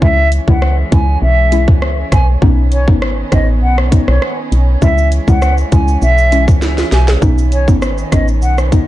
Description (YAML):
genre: dancehall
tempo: 100 BPM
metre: 4/4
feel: straight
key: C# minor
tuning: A4 = 443 Hz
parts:
  - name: concert flute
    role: melody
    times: 0.0-8.6 s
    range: C#5 to G#5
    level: -18 LUFS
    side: equal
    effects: ping-pong delay
  - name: hollow square pluck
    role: accompaniment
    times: 0.0-8.9 s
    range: G#3 to E4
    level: -20 LUFS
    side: left 2 dB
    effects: chorus
  - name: warm chamber string section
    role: sustained chords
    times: 0.0-8.9 s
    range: D#3 to C#4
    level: -25 LUFS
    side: right 3 dB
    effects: sidechain pumping
  - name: woody FM bass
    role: bass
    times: 0.0-8.8 s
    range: G#1 to C#2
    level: -13 LUFS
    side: equal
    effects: none
  - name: island pop drum kit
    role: drums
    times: 0.0-8.9 s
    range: hi-hat, kick drum, rim click, shaker, snare drum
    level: -14 LUFS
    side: equal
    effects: vintage 12-bit sampler grit
room: little or no reverb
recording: dark, warm production, nothing above 10.8 kHz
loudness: -10 LUFS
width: side -15 dB against mid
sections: 0.0-8.9 A section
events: drum fill 6.6-7.2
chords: 0.0 C#m; 2.4 Badd9; 4.8 C#m; 7.2 Badd9